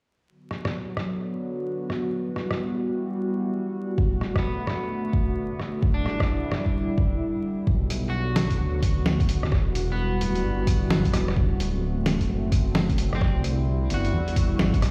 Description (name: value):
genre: future garage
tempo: 130 BPM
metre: 4/4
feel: swing 63% on 16ths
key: unclear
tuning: A4 = 439 Hz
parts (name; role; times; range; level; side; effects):
- warbly tape-like pad; sustained chords; 0.3-14.9 s; D3 to F#4; -31 LUFS; equal; chorus, built-in reverb, sidechain pumping
- lo-fi sampler-style drum kit; drums; 0.5-14.9 s; hi-hat, rim click, snare drum; -30 LUFS; equal; none
- electronic kick drum; drums; 4.0-14.8 s; none; -26 LUFS; equal; none
- electric guitar at the edge of break-up; accompaniment; 4.4-14.9 s; B3 to F#4; -37 LUFS; equal; sidechain pumping, digital delay
- dark detuned saw bass; bass; 7.7-14.9 s; D1 to E2; -28 LUFS; equal; tube saturation, sidechain pumping
room: little or no reverb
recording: played on a big sound system in a bare room, large studio reverb, vinyl crackle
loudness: -25 LUFS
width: mono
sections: 0.3-7.7 A section; 7.7-14.9 B section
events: none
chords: 0.3 Bm; 2.1 Emadd9; 4.0 D; 5.8 Dsus24; 7.7 Bm; 9.5 Emadd9; 11.4 D7; 13.2 Cadd9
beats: | 0.29 0.75 1.21 1.67 | 2.13 2.59 3.06 3.52 | 3.98 4.44 4.90 5.36 | 5.83 6.29 6.75 7.21 | 7.67 8.13 8.59 9.05 | 9.52 9.98 10.44 10.90 | 11.36 11.82 12.29 12.75 | 13.21 13.67 14.13 14.59